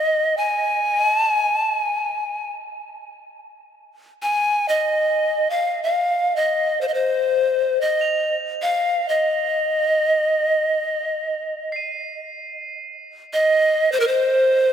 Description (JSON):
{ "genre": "world meditative, free-time meditation music", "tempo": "free time", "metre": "none", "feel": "none", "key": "unclear", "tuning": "A4 = 438 Hz", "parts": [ { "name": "breathy bright pan flute", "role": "melody", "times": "0.0-14.7 s", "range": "Bb4 to Ab5", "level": "-18 LUFS", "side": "equal", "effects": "none" }, { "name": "crotales", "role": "texture", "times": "8.0-14.7 s", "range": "C7 to F7", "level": "-33 LUFS", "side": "right 4 dB", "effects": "none" } ], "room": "wet cathedral reverb, RT60 4.7 s", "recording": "none", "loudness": "-18 LUFS", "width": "side -8 dB against mid", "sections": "0.0-14.7 A section", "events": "none", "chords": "none", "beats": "free time" }